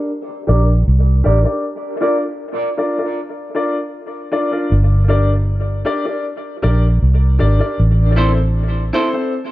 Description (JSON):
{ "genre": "reggae", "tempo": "78 BPM", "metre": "4/4", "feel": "straight", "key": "G dorian", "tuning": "A4 = 440 Hz", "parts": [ { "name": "warm upright piano", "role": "stabs", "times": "0.0-9.3 s", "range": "C4 to D5", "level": "-20 LUFS", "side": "left 2 dB", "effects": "low-pass filter, tape echo" }, { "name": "semi-hollow electric guitar", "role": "accompaniment", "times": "0.3-2.2, 8.2-9.1 s", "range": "E4 to D5", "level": "-23 LUFS", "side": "right 2 dB", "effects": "low-pass filter, tape echo" }, { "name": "vintage muted fingered electric bass", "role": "bass", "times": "0.5-8.9 s", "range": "G1 to C2", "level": "-12 LUFS", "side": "equal", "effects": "none" } ], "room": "light reverb", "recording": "echo-heavy mix", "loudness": "-14 LUFS", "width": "side -16 dB against mid", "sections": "0.0-9.5 A section", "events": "filter sweep 0.0-9.5; break 1.6-7.8", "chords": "0.0 Gm; 1.6 Bb; 4.7 Gm; 7.8 Am" }